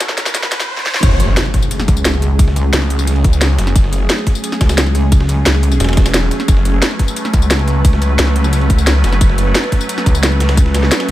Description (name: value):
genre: dark technical drum and bass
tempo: 176 BPM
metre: 4/4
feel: straight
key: F# minor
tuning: A4 = 438 Hz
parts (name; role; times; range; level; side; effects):
- swarming drone; sustained chords; 0.0-11.1 s; F#3 to B4; -21 LUFS; right 1 dB; built-in reverb, sidechain pumping
- breakbeat sampler-style drum kit; drums; 0.0-11.1 s; ride cymbal, snare drum; -26 LUFS; right 1 dB; high-pass filter on cymbals, studio reverb, high-pass filter on snare
- drum and bass drum kit; drums; 0.0-11.1 s; crash cymbal, hi-hat, snare drum, tambourine; -18 LUFS; equal; studio reverb
- riser and impact; sound effects; 0.0-2.4 s; none; -20 LUFS; equal; none
- airy breathy pad; texture; 0.0-0.7 s; F#3 to C#5; -38 LUFS; equal; none
- snarling distorted saw bass; bass; 1.0-9.5 s; E1 to C#2; -14 LUFS; equal; overdrive, sidechain pumping
- electronic kick drum; drums; 1.0-10.6 s; none; -12 LUFS; equal; studio reverb
- pulsing pluck wobble bass; bass; 1.9-11.1 s; C#2; -14 LUFS; equal; chorus
room: little or no reverb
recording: high-pass filter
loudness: -11 LUFS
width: side -15 dB against mid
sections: 0.0-1.0 A section; 1.0-11.1 B section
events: build-up 0.0-1.0; drum fill 0.0-0.7, 0.8; riser 0.0-1.0; drop 1.0-11.1; impact 1.0-2.4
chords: 0.0 F#m; 1.0 F#madd9